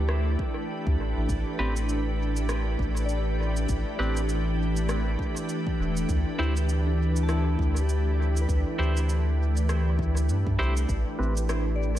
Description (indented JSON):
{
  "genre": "ambient dub",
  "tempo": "100 BPM",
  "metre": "4/4",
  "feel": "swing 59% on 16ths",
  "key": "unclear",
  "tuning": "A4 = 438 Hz",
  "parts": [
    { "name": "soft additive organ-like pad", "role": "sustained chords", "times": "0.0-12.0 s", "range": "E3 to B4", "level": "-30 LUFS", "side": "equal", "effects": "ensemble chorus, built-in reverb" },
    { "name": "soft dub sub bass", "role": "bass", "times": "0.0-12.0 s", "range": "E1 to G2", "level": "-25 LUFS", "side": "equal", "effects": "none" },
    { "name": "electronic rim click and cabasa", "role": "drums", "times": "0.1-12.0 s", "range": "none", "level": "-39 LUFS", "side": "equal", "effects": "studio reverb, dub echo" },
    { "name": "electronic kick drum", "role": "drums", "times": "0.4-11.0 s", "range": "none", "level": "-32 LUFS", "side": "equal", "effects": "studio reverb" },
    { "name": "clean electric guitar", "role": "stabs", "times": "1.6-11.3 s", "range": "C4 to C5", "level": "-35 LUFS", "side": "right 1 dB", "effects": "low-pass filter, dub echo" },
    { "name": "soft synth bell", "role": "arpeggios", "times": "3.1-12.0 s", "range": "D4 to A5", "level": "-38 LUFS", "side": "left 4 dB", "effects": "chorus, phaser, dub echo" }
  ],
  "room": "light reverb",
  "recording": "none",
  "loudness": "-24 LUFS",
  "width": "side -12 dB against mid",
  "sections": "0.0-10.9 A section; 10.9-12.0 A section",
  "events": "filter sweep on clean electric guitar 0.0-10.9, 10.9-12.0",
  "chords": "0.0 Dsus4; 1.3 A7sus2; 6.1 D9sus4; 10.9 Am9"
}